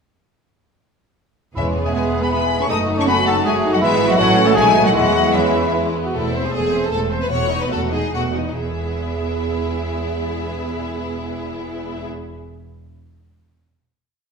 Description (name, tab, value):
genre	quick classical-period movement for symphony orchestra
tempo	129-162 BPM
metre	3/4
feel	rubato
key	E major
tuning	A4 = 444 Hz
part	rich studio violin section	melody	1.6-12.1 s	C5 to D#6	-23 LUFS	left 4 dB	none
part	clear studio violin section	second line	1.6-12.1 s	G#3 to C#5	-25 LUFS	left 2 dB	none
part	hollow small flute group	second line	1.6-5.7 s	B4 to A5	-24 LUFS	left 1 dB	none
part	warm cor anglais	second line	1.6-5.7 s	E4 to D#5	-24 LUFS	right 1 dB	none
part	mellow bassoon	accompaniment	1.6-6.1 s	B3 to F#4	-25 LUFS	right 1 dB	none
part	rich studio viola section	accompaniment	1.6-12.1 s	E3 to C5	-25 LUFS	right 3 dB	none
part	mellow French horn section	sustained chords	1.6-5.9 s	D#3 to B4	-24 LUFS	equal	none
part	rich studio cello section	bass	1.6-12.1 s	E2 to D#4	-26 LUFS	right 3 dB	none
part	rich studio double bass section	bass	1.6-12.1 s	E1 to E2	-26 LUFS	right 3 dB	none
part	timpani	percussion	1.6-2.1 s	E2	-28 LUFS	left 1 dB	none
room	wet scoring stage reverb, RT60 1.4 s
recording	minimal, uncompressed stereo recording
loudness	-16 LUFS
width	side -5 dB against mid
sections	1.6-6.1 A section; 6.1-8.6 coda; 8.6-11.3 final chord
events	slowing down 5.5-8.6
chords	1.6 E; 2.7 D#dim/F#; 3.8 E/G#; 4.2 F#m7/A; 4.6 B7; 5.0 E; 6.1 Am/E; 7.3 B7/E; 8.6 E